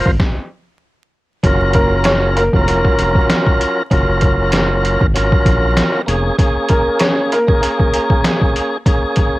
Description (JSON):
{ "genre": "hip hop, boom-bap hip-hop", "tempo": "97 BPM", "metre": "4/4", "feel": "swing 55% on 16ths", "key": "unclear", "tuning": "A4 = 440 Hz", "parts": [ { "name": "tonewheel organ", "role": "accompaniment", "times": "0.0-9.4 s", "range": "F3 to C5", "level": "-17 LUFS", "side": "equal", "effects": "overdrive, fast rotary speaker, high-pass filter, low-pass filter, cassette tape" }, { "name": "round analog bass", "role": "bass", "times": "0.0-6.3 s", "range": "F1 to Bb1", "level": "-18 LUFS", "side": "equal", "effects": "tube saturation" }, { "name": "trip hop sampler-style drum kit", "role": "drums", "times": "0.1-9.3 s", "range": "hi-hat, kick drum, snare drum", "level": "-15 LUFS", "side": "equal", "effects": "overdrive, cassette tape" }, { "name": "dark upright piano", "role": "melody", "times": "1.7-8.2 s", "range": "Bb3 to Db5", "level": "-18 LUFS", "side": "equal", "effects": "high-pass filter, low-pass filter, cassette tape, analog delay" } ], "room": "light reverb", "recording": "home recording on cassette, vinyl crackle", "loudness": "-12 LUFS", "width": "side -18 dB against mid", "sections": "0.0-1.4 A section; 1.4-9.4 B section", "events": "stop 0.2-1.4", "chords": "0.0 Fsus4; 1.4 Gbmaj7; 6.1 Bbm7/F" }